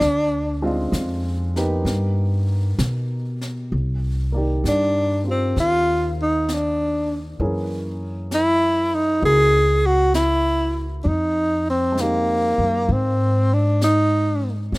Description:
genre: jazz ballad.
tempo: 66 BPM.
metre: 4/4.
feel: swing 67% on 8ths.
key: C minor from 3.7 s.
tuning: A4 = 441 Hz.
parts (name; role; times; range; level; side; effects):
breathy tenor saxophone; melody; 0.0-14.5 s; Bb3 to G#4; -19 LUFS; equal; none.
warm upright piano; accompaniment; 0.0-14.8 s; Eb3 to D5; -29 LUFS; right 1 dB; none.
upright bass; bass; 0.0-14.8 s; C2 to B2; -22 LUFS; equal; none.
jazz brush drum kit; drums; 0.0-14.8 s; brushed snare drum, hi-hat, snare drum; -32 LUFS; equal; none.
room: small room ambience.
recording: rough home demo mix.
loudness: -18 LUFS.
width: side -22 dB against mid.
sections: 0.0-3.7 A section; 3.7-14.8 B section.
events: tenor saxophone solo 0.0-3.7.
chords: 0.0 Dm7b5; 1.9 Gaug; 3.7 Cm9; 7.4 F#9; 11.1 Fm7.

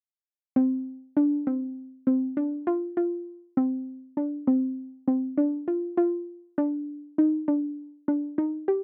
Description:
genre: progressive instrumental, progressive.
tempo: 100 BPM.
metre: 5/4.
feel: straight.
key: unclear.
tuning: A4 = 439 Hz.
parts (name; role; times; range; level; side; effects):
soft round pluck; solo; 0.6-8.8 s; C4 to G4; -27 LUFS; equal; chorus.
room: light reverb.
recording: dry, close 1970s-style studio recording.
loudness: -28 LUFS.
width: mono.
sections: 0.6-8.8 A section.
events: none.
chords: none.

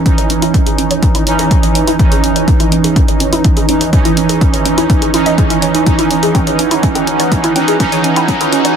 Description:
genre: melodic techno.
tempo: 124 BPM.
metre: 4/4.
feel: straight.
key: C# minor.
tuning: A4 = 440 Hz.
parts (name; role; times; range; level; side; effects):
dark analog pad; sustained chords; 0.0-8.8 s; E3 to F#5; -20 LUFS; left 1 dB; chorus, sidechain pumping.
analog synth brass; stabs; 0.0-8.8 s; E3 to D#4; -14 LUFS; right 4 dB; chorus, sidechain pumping, ping-pong delay.
woody wave-folded pluck; arpeggios; 0.1-8.7 s; C#4 to D#5; -18 LUFS; left 1 dB; ensemble chorus, cassette tape, sidechain pumping, ping-pong delay.
electronic hi-hat and woodblock; drums; 0.1-8.7 s; none; -20 LUFS; equal; none.
electronic kick drum; drums; 0.1-8.4 s; none; -13 LUFS; equal; none.
riser; sound effects; 6.8-8.8 s; none; -26 LUFS; left 1 dB; none.
room: light reverb, digital ambience.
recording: dense, heavily limited modern master, high-pass filter.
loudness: -9 LUFS.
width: side -7 dB against mid.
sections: 0.0-8.8 A section.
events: build-up 0.0-8.8; filter sweep on synth pluck 0.0-8.8; filter sweep 0.0-8.8; drum fill 5.9-8.8; riser 6.8-8.8.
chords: 0.0 C#madd9.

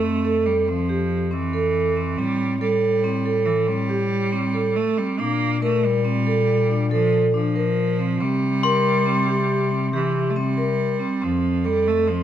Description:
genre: contemporary instrumental, chamber music in an uneven meter.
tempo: 139 BPM.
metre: 7/4.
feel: straight.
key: Bb lydian.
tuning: A4 = 443 Hz.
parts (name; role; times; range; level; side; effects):
clear cello; second line; 0.0-12.2 s; E3 to Bb3; -24 LUFS; right 4 dB; none.
vibraphone with medium mallets; arpeggios; 0.0-12.2 s; C4 to Bb4; -22 LUFS; right 1 dB; none.
dark bass clarinet; bass; 0.0-12.2 s; F2 to C3; -25 LUFS; left 4 dB; none.
glockenspiel with hard plastic mallets; texture; 8.6-9.3 s; C6; -27 LUFS; left 3 dB; none.
room: moderate recital hall reverb, RT60 1.4 s.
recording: none.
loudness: -19 LUFS.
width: side -10 dB against mid.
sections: 0.0-12.2 A section.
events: none.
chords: 0.0 Fmaj9; 2.2 Am7; 5.2 Bbmaj9; 8.2 C5; 11.2 Fadd9.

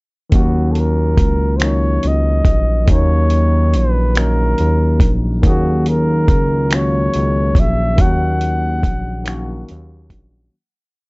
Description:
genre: slow six-eight R&B.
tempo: 47 BPM (dotted quarters).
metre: 6/8.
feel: straight.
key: unclear.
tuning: A4 = 442 Hz.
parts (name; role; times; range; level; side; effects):
barky tine electric piano; accompaniment; 0.3-10.6 s; D#3 to G#4; -21 LUFS; left 1 dB; none.
smooth synth bass; bass; 0.3-10.5 s; A#1 to D#2; -16 LUFS; equal; none.
dusty soul sampler-style drum kit; drums; 0.3-10.3 s; finger snaps, hi-hat, kick drum; -15 LUFS; equal; vintage 12-bit sampler grit.
breathy flugelhorn; melody; 0.4-9.7 s; F#4 to F#5; -21 LUFS; equal; none.
room: little or no reverb.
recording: dry, gritty hardware recording, nothing above 7.8 kHz.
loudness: -13 LUFS.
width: side -27 dB against mid.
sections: 0.3-10.5 verse.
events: fade-out 8.0-10.5.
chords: 0.3 D#m7.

